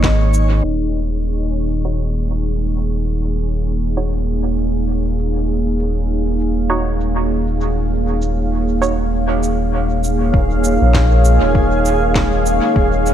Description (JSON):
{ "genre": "ambient dub", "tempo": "99 BPM", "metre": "4/4", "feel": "swing 56% on 16ths", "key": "unclear", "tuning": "A4 = 440 Hz", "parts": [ { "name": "deep dark ambient pad", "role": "sustained chords", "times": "0.0-13.1 s", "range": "Bb3 to F5", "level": "-19 LUFS", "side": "right 1 dB", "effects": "chorus, built-in reverb" }, { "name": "warm sub bass", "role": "bass", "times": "0.0-13.1 s", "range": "Eb1 to Bb1", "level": "-18 LUFS", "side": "equal", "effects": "tube saturation" }, { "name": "electronic kick drum", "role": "drums", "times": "0.0-0.2, 10.3-12.9 s", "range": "none", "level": "-18 LUFS", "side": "equal", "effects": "none" }, { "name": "electronic snare drum and shaker", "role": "drums", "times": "0.0-13.1 s", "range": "none", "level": "-26 LUFS", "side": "equal", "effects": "dub echo" }, { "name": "backwards swelling texture", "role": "texture", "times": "0.0-0.7, 11.1-13.1 s", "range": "Ab3 to Db5", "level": "-29 LUFS", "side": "left 1 dB", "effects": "built-in reverb" }, { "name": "filtered dub chord stab", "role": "stabs", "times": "1.8-9.0 s", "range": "Eb4 to Db5", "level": "-26 LUFS", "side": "right 4 dB", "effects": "chorus, dub echo" } ], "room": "light reverb, digital ambience", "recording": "low-pass filter", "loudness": "-15 LUFS", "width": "side -10 dB against mid", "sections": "0.6-10.3 A section; 10.3-13.1 B section", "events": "filter sweep 0.6-10.3", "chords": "0.0 Badd9 (rootless); 0.6 Eb7(no3); 10.3 Eb5" }